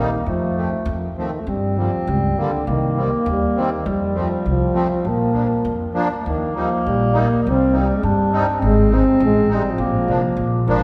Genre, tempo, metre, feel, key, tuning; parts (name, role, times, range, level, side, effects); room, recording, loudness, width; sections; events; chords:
alpine folk, alpine dance band; 101 BPM; 2/4; rubato; Bb major, Eb major from 6.3 s; A4 = 441 Hz
mellow euphonium; melody; 0.0-10.7 s; D3 to C4; -23 LUFS; equal
mellow clarinet; second line; 0.0-10.6 s; F3 to D4; -27 LUFS; equal
musette accordion; accompaniment; 0.0-10.8 s; D3 to Eb4; -28 LUFS; equal
upright bass; bass; 0.3-10.8 s; Ab1 to G2; -24 LUFS; equal
wet church reverb, RT60 3.5 s; recorded in a church or concert hall; -19 LUFS; mono
0.0-6.3 A section; 6.3-10.8 B section
0.3 F; 1.5 Gm; 2.7 Cm7; 3.9 Fadd9; 5.0 Bb; 6.3 Eb; 7.5 Cm; 8.6 Ab; 9.8 Bb